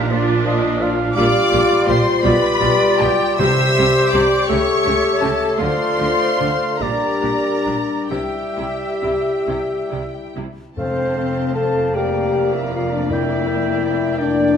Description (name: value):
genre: classical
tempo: 43-57 BPM (dotted quarters)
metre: 6/8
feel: rubato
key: unclear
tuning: A4 = 440 Hz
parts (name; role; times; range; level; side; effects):
- warm symphonic violin section; melody; 0.0-14.6 s; G5 to E6; -24 LUFS; left 2 dB; none
- warm oboe; second line; 0.0-14.5 s; C5 to G5; -26 LUFS; right 3 dB; none
- warm symphonic violin section; second line; 0.0-14.6 s; G4 to E5; -27 LUFS; left 4 dB; none
- rich symphonic viola section; accompaniment; 0.0-14.6 s; G3 to G4; -27 LUFS; right 2 dB; none
- mellow French horn section; sustained chords; 0.0-14.6 s; F3 to A4; -22 LUFS; left 4 dB; none
- clear symphonic double bass section; bass; 0.0-14.6 s; F1 to D2; -27 LUFS; right 3 dB; none
- rich symphonic cello section; bass; 0.0-14.6 s; F2 to D3; -27 LUFS; right 3 dB; none
- bright concert flute; second line; 0.1-14.6 s; C5 to A5; -26 LUFS; left 1 dB; none
- warm clarinet; second line; 0.1-14.6 s; F4 to D5; -26 LUFS; left 2 dB; none
- dark bassoon; accompaniment; 0.1-14.6 s; F3 to Bb3; -24 LUFS; right 1 dB; none
- timpani; percussion; 3.4-4.4, 10.8-14.1 s; F2 to C3; -26 LUFS; equal; none
room: wet recital hall reverb, RT60 1.3 s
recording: minimal, uncompressed stereo recording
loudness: -15 LUFS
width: side -7 dB against mid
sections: 0.0-10.8 A section; 10.8-14.6 B section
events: none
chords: 0.0 Bb; 1.2 Gm7/Bb; 2.2 G7/B; 3.4 C; 4.5 A7/C#; 5.6 Dm7; 6.8 Gm/Bb; 8.1 C; 10.8 F; 12.0 Bb/F; 13.1 Gm/F